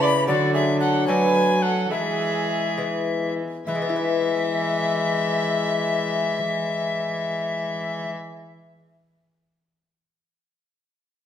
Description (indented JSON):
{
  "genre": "classical, renaissance-style consort dance",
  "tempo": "65-77 BPM (dotted quarters)",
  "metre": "6/8",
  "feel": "straight",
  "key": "E mixolydian",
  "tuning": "A4 = 441 Hz",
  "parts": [
    { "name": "bright tenor recorder", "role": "melody", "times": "0.0-8.1 s", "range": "D5 to C6", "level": "-25 LUFS", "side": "left 4 dB", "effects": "none" },
    { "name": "dark violin", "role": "second line", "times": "0.0-8.1 s", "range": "F#4 to E5", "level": "-28 LUFS", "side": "right 4 dB", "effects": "none" },
    { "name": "dark bassoon", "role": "accompaniment", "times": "0.0-8.1 s", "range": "E3 to G#3", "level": "-29 LUFS", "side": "left 2 dB", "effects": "none" },
    { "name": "lute", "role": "accompaniment", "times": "0.0-8.9 s", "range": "C#3 to B4", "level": "-29 LUFS", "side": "left 5 dB", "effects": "none" },
    { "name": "dark cello", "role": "bass", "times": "0.0-8.1 s", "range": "C#3 to F#3", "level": "-27 LUFS", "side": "right 1 dB", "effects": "none" }
  ],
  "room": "wet recital hall reverb, RT60 1.5 s",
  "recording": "none",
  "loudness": "-20 LUFS",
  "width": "side -9 dB against mid",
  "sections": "0.0-3.7 A section; 3.7-7.3 B section",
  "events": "slowing down 0.0-3.7",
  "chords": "0.3 D; 1.9 E",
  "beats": "| 0.28 1.08 | 1.91 2.77 | 3.68 4.59 | 5.51 6.43"
}